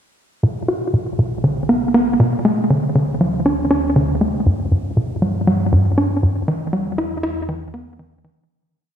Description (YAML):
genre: ambient, sequencer-driven space music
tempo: 119 BPM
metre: 4/4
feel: straight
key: unclear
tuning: A4 = 440 Hz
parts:
  - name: tight sequencer bass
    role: riff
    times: 0.4-8.4 s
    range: G2 to F#4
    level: -16 LUFS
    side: equal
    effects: analog delay
  - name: analog drone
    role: bass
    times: 1.5-8.5 s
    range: B1 to G2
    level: -26 LUFS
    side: equal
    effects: chorus
room: wet echo chamber reverb, RT60 2.2 s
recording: echo-heavy mix, cassette tape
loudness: -16 LUFS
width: side -9 dB against mid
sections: 0.4-8.5 A section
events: fade-in on synth drone 0.4-8.5; filter sweep on analog synth bass 0.4-8.5; fade-out 5.8-8.5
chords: 0.4 N.C.; 2.4 D5; 4.5 N.C.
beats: | 0.43 0.93 1.44 1.94 | 2.45 2.95 3.46 3.96 | 4.46 4.97 5.47 5.98 | 6.48 6.99 7.49 7.99